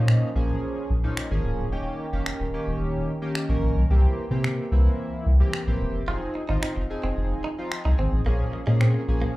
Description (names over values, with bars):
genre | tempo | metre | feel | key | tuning
dance-pop | 110 BPM | 4/4 | straight | F minor | A4 = 440 Hz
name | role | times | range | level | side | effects
chorused polysynth | accompaniment | 0.0-9.4 s | Eb3 to Bb4 | -29 LUFS | equal | plate reverb, slapback echo
warm sub bass | bass | 0.0-9.2 s | Db1 to C3 | -21 LUFS | equal | none
downlifter | sound effects | 0.0-1.7 s | none | -45 LUFS | equal | none
electronic finger snaps | drums | 0.1-8.9 s | none | -32 LUFS | equal | none
direct-recorded clean electric guitar | riff | 6.1-9.3 s | Ab3 to F4 | -33 LUFS | right 4 dB | lush chorus, slapback echo
room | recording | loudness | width
light reverb | live gig heard through the venue's PA, club reverb | -22 LUFS | side -18 dB against mid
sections
0.0-9.4 A section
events
none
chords
0.0 Bbm7; 1.7 Eb7; 3.9 C7; 6.1 Fm7; 8.3 Bbm7